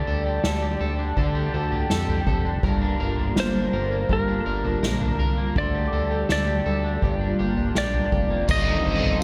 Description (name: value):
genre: dream pop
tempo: 82 BPM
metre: 4/4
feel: straight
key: G minor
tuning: A4 = 440 Hz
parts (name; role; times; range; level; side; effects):
- clean lap steel guitar; melody; 0.0-9.2 s; Bb4 to Eb5; -31 LUFS; equal; analog delay
- phased analog pad; sustained chords; 0.0-9.2 s; D3 to A5; -32 LUFS; equal; phaser, chorus
- electric guitar at the edge of break-up; arpeggios; 0.0-9.2 s; G2 to Bb4; -32 LUFS; equal; lush chorus, analog delay
- fat analog bass; bass; 0.0-9.2 s; F1 to F2; -29 LUFS; equal; none
- celesta; texture; 0.0-9.2 s; D5 to G6; -41 LUFS; equal; analog delay
- soft-mallet drum kit; drums; 0.4-9.2 s; crash cymbal, kick drum, snare drum, tambourine, toms; -29 LUFS; equal; none
- biting overdriven guitar; accompaniment; 8.5-9.2 s; G3 to Eb5; -30 LUFS; equal; harmonic tremolo, ensemble chorus, analog delay
room: light reverb, small room ambience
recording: echo-heavy mix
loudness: -23 LUFS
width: mono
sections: 0.0-8.5 A section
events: none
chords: 0.0 Dsus4; 2.6 Gm7; 5.6 Dsus4; 7.0 Gm7; 8.5 F7/G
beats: 0.44 1.17 1.90 | 2.63 3.37 4.10 4.83 | 5.56 6.29 7.03 7.76 | 8.49 9.22